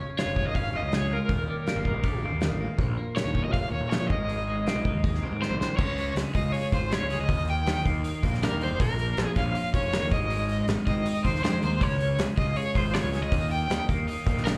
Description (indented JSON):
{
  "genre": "indie rock",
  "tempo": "160 BPM",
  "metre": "4/4",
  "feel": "straight",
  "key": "Eb mixolydian",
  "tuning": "A4 = 440 Hz",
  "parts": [
    { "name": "twelve-string electric guitar", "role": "riff", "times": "0.0-14.6 s", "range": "Eb2 to Ab4", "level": "-34 LUFS", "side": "equal", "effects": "double-tracked, slapback echo" },
    { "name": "overdriven electric guitar", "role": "melody", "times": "0.2-14.5 s", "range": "Bb4 to G5", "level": "-34 LUFS", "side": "equal", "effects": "tremolo, slapback echo, analog delay" },
    { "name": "loose indie drum kit", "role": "drums", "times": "0.2-14.5 s", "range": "crash cymbal, hi-hat, kick drum, snare drum", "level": "-32 LUFS", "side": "equal", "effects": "none" },
    { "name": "fuzz picked electric bass", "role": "bass", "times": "0.3-14.6 s", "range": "Eb1 to Bb2", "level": "-32 LUFS", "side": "equal", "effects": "overdrive" }
  ],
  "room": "light reverb",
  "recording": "live gig heard through the venue's PA, club reverb",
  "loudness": "-27 LUFS",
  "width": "mono",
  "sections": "0.0-5.8 A section; 5.8-14.6 B section",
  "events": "drum fill 5.4-5.8",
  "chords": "0.0 Db; 1.3 Eb; 2.8 Bbm; 4.1 Ab; 5.8 Db; 7.3 Eb; 8.8 Bbm; 10.1 Ab; 11.8 Db; 13.3 Eb",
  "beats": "0.17 0.55 0.92 | 1.29 1.66 2.04 2.41 | 2.79 3.16 3.53 3.91 | 4.28 4.66 5.03 5.41 | 5.78 6.16 6.53 6.91 | 7.29 7.66 8.04 8.41 | 8.79 9.17 9.54 9.92 | 10.30 10.68 11.05 11.43 | 11.81 12.19 12.56 12.94 | 13.32 13.70 14.07 14.45"
}